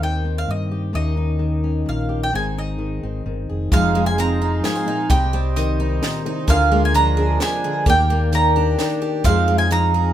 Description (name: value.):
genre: acoustic folk duo or small band.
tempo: 130 BPM.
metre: 3/4.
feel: straight.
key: Eb major.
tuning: A4 = 441 Hz.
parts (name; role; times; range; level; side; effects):
mandolin; melody; 0.0-10.1 s; Eb5 to Bb5; -22 LUFS; right 3 dB; none.
fingerpicked steel-string acoustic guitar; accompaniment; 0.0-10.1 s; Eb2 to Bb4; -23 LUFS; left 4 dB; none.
fingered electric bass; bass; 0.0-10.1 s; F1 to G2; -21 LUFS; equal; none.
mellow accordion; sustained chords; 3.7-10.1 s; Eb4 to Ab5; -30 LUFS; right 4 dB; none.
picked twelve-string acoustic guitar; arpeggios; 3.7-10.1 s; F3 to Ab4; -27 LUFS; right 4 dB; none.
compact cocktail drum kit; drums; 3.7-9.8 s; hi-hat, kick drum, snare drum; -20 LUFS; equal; none.
room: moderate studio reverb, RT60 0.7 s.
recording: minimal, uncompressed stereo recording.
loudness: -17 LUFS.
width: side -11 dB against mid.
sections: 0.0-3.7 A section; 3.7-10.1 B section.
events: none.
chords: 0.0 Cm/Eb; 0.9 Eb7; 2.3 Ab; 3.7 Fm7; 5.1 Cm; 6.5 Bb7/D; 7.9 Ebmaj7; 9.2 Fm7.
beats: 0.01 0.48 | 0.94 1.41 1.87 | 2.33 2.80 3.26 | 3.72 4.18 4.64 | 5.11 5.57 6.03 | 6.49 6.95 7.41 | 7.87 8.33 8.79 | 9.25 9.71.